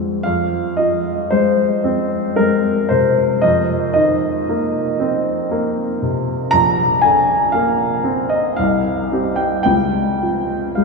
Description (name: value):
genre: classical, impressionist solo piano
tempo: 57 BPM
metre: 3/4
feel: uneven beats, rubato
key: F minor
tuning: A4 = 437 Hz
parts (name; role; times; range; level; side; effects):
- warm grand piano; solo; 0.0-10.8 s; Bb1 to Bb5; -15 LUFS; left 1 dB; none
room: wet cathedral reverb, RT60 6.3 s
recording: in a vast, echoing space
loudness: -15 LUFS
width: side -3 dB against mid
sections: 0.0-10.8 A section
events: none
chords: 0.3 Fm; 3.4 F7sus4; 6.5 Bbadd9; 8.6 Csus4; 9.7 Db(#11)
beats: | 0.27 1.33 2.40 | 3.44 4.47 5.50 | 6.53 7.53 8.57 | 9.67 10.79